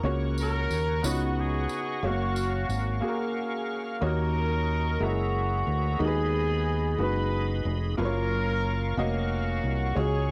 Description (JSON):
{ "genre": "slow gospel", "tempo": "60 BPM (dotted quarters)", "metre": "6/8", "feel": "straight", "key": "F# major", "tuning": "A4 = 440 Hz", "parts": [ { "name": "mellow horn section", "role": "melody", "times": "0.0-10.3 s", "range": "A#3 to E#5", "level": "-34 LUFS", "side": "equal", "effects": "cassette tape" }, { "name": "bright baby grand piano", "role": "accompaniment", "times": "0.0-10.3 s", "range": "C#3 to E#5", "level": "-34 LUFS", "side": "equal", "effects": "cassette tape" }, { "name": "bright tonewheel organ", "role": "sustained chords", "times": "0.0-10.3 s", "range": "F#4 to C#6", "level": "-40 LUFS", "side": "equal", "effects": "fast rotary speaker, overdrive, chorus vibrato, cassette tape" }, { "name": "fingered electric bass", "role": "bass", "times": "0.0-10.3 s", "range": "E#1 to D#2", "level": "-30 LUFS", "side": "equal", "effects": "none" }, { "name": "bright trumpet", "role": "melody", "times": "0.4-3.4 s", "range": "F#4 to A#4", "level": "-37 LUFS", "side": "equal", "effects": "cassette tape" }, { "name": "tambourine", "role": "percussion", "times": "0.4-3.0 s", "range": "none", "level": "-42 LUFS", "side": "equal", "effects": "none" } ], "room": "light reverb", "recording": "home recording on cassette", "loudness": "-28 LUFS", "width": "mono", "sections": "0.0-4.0 A section; 4.0-10.3 B section", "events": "break 3.0-4.0", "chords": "0.0 F#/C#; 1.0 C#9sus4; 2.0 F#maj7; 4.0 D#m7; 5.0 F#9; 6.0 B6/D#; 8.0 F#maj7" }